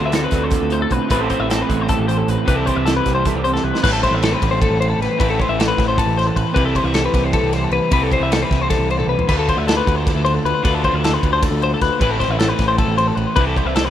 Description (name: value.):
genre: math rock and midwest emo.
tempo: 308 BPM (eighths).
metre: 7/8.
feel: straight.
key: unclear.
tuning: A4 = 441 Hz.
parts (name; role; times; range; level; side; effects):
electric guitar through a small old amp; accompaniment; 0.0-5.6 s; A2 to C5; -24 LUFS; right 7 dB; analog chorus.
twelve-string electric guitar; arpeggios; 0.0-13.9 s; A4 to E5; -20 LUFS; left 5 dB; digital delay, plate reverb.
overdriven semi-hollow guitar; riff; 0.0-13.9 s; A2 to F4; -22 LUFS; right 2 dB; none.
growling picked electric bass; bass; 0.0-13.9 s; A1 to D2; -21 LUFS; right 1 dB; overdrive.
loose indie drum kit; drums; 0.1-13.9 s; crash cymbal, hi-hat, kick drum, ride cymbal, snare drum, toms; -21 LUFS; right 1 dB; none.
room: moderate small room reverb, RT60 0.5 s.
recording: rough home demo mix.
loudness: -15 LUFS.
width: side -11 dB against mid.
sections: 0.0-3.8 A section; 3.8-13.9 B section.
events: drum fill 3.5, 9.0.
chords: 0.0 Dm7; 1.1 Am7; 2.5 Cmaj7; 3.8 Am7; 6.6 Cmaj7; 9.3 Dm7; 12.0 Am; 13.4 Cmaj7.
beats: 0.13 0.33 0.52 0.71 0.91 | 1.10 1.30 1.50 1.69 1.89 2.08 2.27 | 2.47 2.66 2.86 3.05 3.25 3.44 3.64 | 3.83 4.03 4.22 4.42 4.61 4.80 5.00 | 5.19 5.39 5.58 5.78 5.97 6.17 6.36 | 6.55 6.75 6.94 7.14 7.33 7.53 7.72 | 7.92 8.11 8.30 8.50 8.69 8.89 9.08 | 9.28 9.47 9.67 9.86 10.05 10.25 10.44 | 10.64 10.83 11.03 11.22 11.42 11.61 11.81 | 12.00 12.20 12.39 12.59 12.78 12.98 13.17 | 13.37 13.56 13.76.